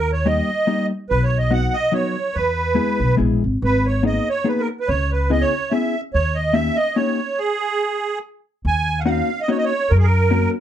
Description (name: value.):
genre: musette waltz.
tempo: 143 BPM.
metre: 3/4.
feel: swing 54% on 8ths.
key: unclear.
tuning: A4 = 440 Hz.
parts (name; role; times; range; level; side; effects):
musette accordion; melody; 0.0-10.5 s; G#4 to Ab5; -21 LUFS; right 3 dB; none.
upright bass; bass; 0.0-10.5 s; G#1 to Gb2; -19 LUFS; equal; none.
vintage hollow-body jazz guitar; accompaniment; 0.3-10.5 s; F#3 to Bb4; -21 LUFS; left 4 dB; none.
room: light reverb.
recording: dark, warm production.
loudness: -17 LUFS.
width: side -10 dB against mid.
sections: 0.0-8.7 A section; 8.7-10.6 B section.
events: stop 7.4-8.7.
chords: 0.0 D#; 1.1 B; 2.4 E; 3.6 G#madd9; 4.9 C#m7; 6.1 D#7; 7.4 N.C.; 8.7 Ebm7; 9.9 Gb.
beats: 0.28 0.69 | 1.11 1.52 1.94 | 2.36 2.78 3.20 | 3.62 4.04 4.47 | 4.88 5.30 5.72 | 6.13 6.55 6.97 | 7.39 7.81 8.23 | 8.65 9.08 9.50 | 9.91 10.33.